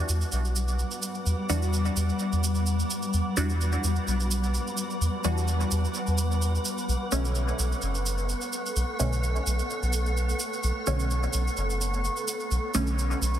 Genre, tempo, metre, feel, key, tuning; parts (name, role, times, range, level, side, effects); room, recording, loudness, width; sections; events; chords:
dub techno; 128 BPM; 4/4; swing 54% on 16ths; E minor; A4 = 436 Hz
granular cloud pad; sustained chords; 0.0-13.4 s; G3 to D6; -32 LUFS; left 1 dB; built-in reverb
filtered dub chord stab; stabs; 0.0-13.4 s; B2 to F#4; -34 LUFS; equal; phaser, dub echo
wind-like tuned noise texture; texture; 0.2-13.4 s; B3 to B4; -37 LUFS; equal; built-in reverb
soft dub sub bass; bass; 0.1-13.4 s; F#1 to E2; -26 LUFS; equal
cabasa; percussion; 0.1-13.4 s; -34 LUFS; right 4 dB
light reverb, digital ambience; dense, heavily limited modern master; -25 LUFS; side -11 dB against mid
0.0-13.4 A section
0.0 Em9; 6.9 Bm9